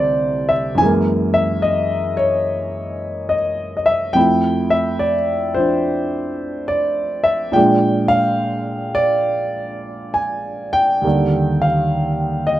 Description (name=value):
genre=solo jazz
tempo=71 BPM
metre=4/4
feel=swing 66% on 8ths, rubato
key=unclear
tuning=A4 = 438 Hz
part: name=warm concert grand piano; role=solo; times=0.0-12.6 s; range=C2 to G#5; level=-16 LUFS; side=equal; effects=none
room=moderate studio reverb, RT60 0.5 s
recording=rough home demo mix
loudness=-16 LUFS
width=side -14 dB against mid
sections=0.0-12.6 A section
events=none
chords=0.0 C6; 0.8 F#9; 4.2 Fmaj7; 7.5 Bb7; 11.0 Ebmaj7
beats=| 0.80 1.64 2.48 3.31 | 4.16 5.01 5.85 6.70 | 7.55 8.41 9.28 10.17 | 11.05 11.92